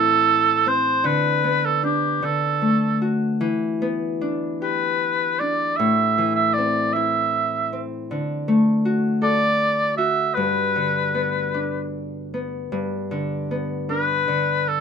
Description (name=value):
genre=children's music, lullaby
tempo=51 BPM (dotted quarters)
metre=6/8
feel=rubato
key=G major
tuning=A4 = 441 Hz
part: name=warm oboe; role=melody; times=0.0-14.8 s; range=G4 to E5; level=-19 LUFS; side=right 1 dB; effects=none
part: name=Celtic harp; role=accompaniment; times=0.0-14.8 s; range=G2 to A4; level=-23 LUFS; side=left 2 dB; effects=none
room=light reverb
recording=minimal, uncompressed stereo recording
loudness=-19 LUFS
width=side -6 dB against mid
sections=0.0-12.7 A section; 12.7-14.8 B section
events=none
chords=0.0 Am; 1.0 G/D; 2.2 D; 3.4 Em7; 5.8 Am; 8.1 D; 10.4 G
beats=| 1.05 2.22 | 3.41 4.61 | 5.79 6.96 | 8.11 9.23 | 10.37 11.54 | 12.73 13.89